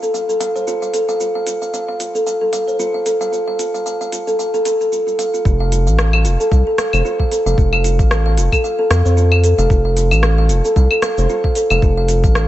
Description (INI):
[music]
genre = organic downtempo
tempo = 113 BPM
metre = 4/4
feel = swing 56% on 16ths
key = F major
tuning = A4 = 440 Hz
[part]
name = kalimba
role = arpeggios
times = 0.0-12.5 s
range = F4 to F5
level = -17 LUFS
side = equal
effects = low-pass filter, tape echo
[part]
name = organic electronic drum kit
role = drums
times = 0.0-12.5 s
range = claves, hi-hat, rim click, shaker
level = -21 LUFS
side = left 1 dB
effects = none
[part]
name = round analog bass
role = bass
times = 5.5-12.5 s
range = F1 to F2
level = -14 LUFS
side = equal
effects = sidechain pumping
[part]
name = electronic kick drum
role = drums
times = 5.5-12.3 s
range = none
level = -15 LUFS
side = equal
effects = none
[sound]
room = little or no reverb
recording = nothing above 8.0 kHz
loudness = -14 LUFS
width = side -14 dB against mid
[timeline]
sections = 0.0-5.5 A section; 5.5-12.5 B section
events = none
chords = 0.0 F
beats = 0.14 0.68 | 1.21 1.74 2.27 2.80 | 3.33 3.86 4.39 4.92 | 5.45 5.99 6.52 7.05 | 7.58 8.11 8.64 9.17 | 9.70 10.23 10.76 11.29 | 11.82 12.36